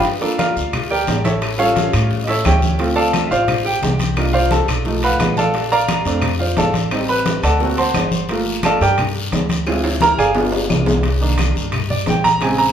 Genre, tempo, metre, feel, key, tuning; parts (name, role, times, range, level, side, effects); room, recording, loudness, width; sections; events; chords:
Afro-Cuban jazz; 175 BPM; 4/4; straight; G minor; A4 = 439 Hz
bongos; percussion; 0.0-12.6 s; -29 LUFS; left 5 dB
congas; percussion; 0.0-12.7 s; -24 LUFS; equal
guiro; percussion; 0.0-12.7 s; -29 LUFS; left 5 dB
timbales; percussion; 0.0-12.6 s; -26 LUFS; right 1 dB
clear baby grand piano; accompaniment; 0.2-12.7 s; Db3 to C6; -17 LUFS; right 2 dB
claves; percussion; 0.4-12.6 s; -31 LUFS; left 4 dB
upright bass; bass; 0.6-12.7 s; G1 to A2; -21 LUFS; equal
wet large studio reverb, RT60 1.1 s; band playing live in one room; -15 LUFS; side -9 dB against mid
0.0-11.0 A section; 11.0-12.7 A section
grand piano solo 0.0-12.7; drum fill 9.7-11.0
0.0 Gm9; 1.4 A7b13; 2.8 Dm7; 4.2 Cm11; 4.9 B7#11; 5.5 Bbmaj9; 6.9 Am7b5; 7.6 D7b13; 8.3 Gm9; 9.7 Dm7b5; 10.4 G7; 11.0 Cm7